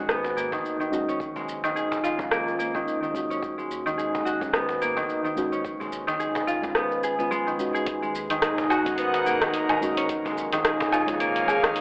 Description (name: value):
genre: organic downtempo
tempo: 108 BPM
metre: 4/4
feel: swing 56% on 16ths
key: G# dorian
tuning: A4 = 439 Hz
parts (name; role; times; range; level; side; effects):
- muted felt-like synth keys; accompaniment; 0.0-11.8 s; G#3 to G#4; -36 LUFS; equal; chorus, sidechain pumping, tape echo
- concert harp; arpeggios; 0.0-11.8 s; D#3 to G#4; -28 LUFS; equal; tape echo
- warm sub bass; bass; 0.0-11.8 s; G#1 to G#2; -52 LUFS; equal; tube saturation, sidechain pumping
- deep house drum kit; drums; 0.1-11.8 s; hi-hat, rim click, shaker, woodblock; -30 LUFS; equal; overdrive
- cajon; percussion; 0.2-11.2 s; none; -39 LUFS; equal; none
- electronic kick drum; drums; 0.5-11.7 s; none; -42 LUFS; equal; overdrive
- airy breathy pad; sustained chords; 7.9-11.8 s; A#2 to F#5; -31 LUFS; equal; chorus, sidechain pumping
room: moderate echo chamber reverb, RT60 2.3 s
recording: dry, gritty hardware recording, telephone sound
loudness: -26 LUFS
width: mono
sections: 0.0-7.9 A section; 7.9-11.8 B section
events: none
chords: 0.0 G#m7; 1.2 A#m7; 3.4 G#m7; 5.6 C#7; 7.9 G#m7; 10.1 A#m7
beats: 0.09 0.65 | 1.20 1.76 2.31 2.87 | 3.43 3.98 4.54 5.09 | 5.65 6.20 6.76 7.32 | 7.87 8.43 8.98 9.54 | 10.09 10.65 11.20 11.76